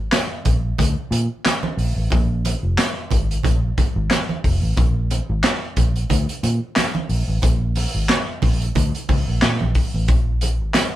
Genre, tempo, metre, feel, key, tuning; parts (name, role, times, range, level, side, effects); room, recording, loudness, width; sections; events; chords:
funk; 90 BPM; 4/4; swing 56% on 16ths; Bb mixolydian; A4 = 439 Hz
vintage muted fingered electric bass; bass; 0.0-10.7 s; F1 to Bb2; -20 LUFS; equal
raw garage drum kit; drums; 0.1-10.9 s; handclaps, hi-hat, kick drum, snare drum; -20 LUFS; equal
congas; percussion; 0.1-10.9 s; -29 LUFS; right 4 dB
light reverb; band playing live in one room; -17 LUFS; side -14 dB against mid
0.0-11.0 A section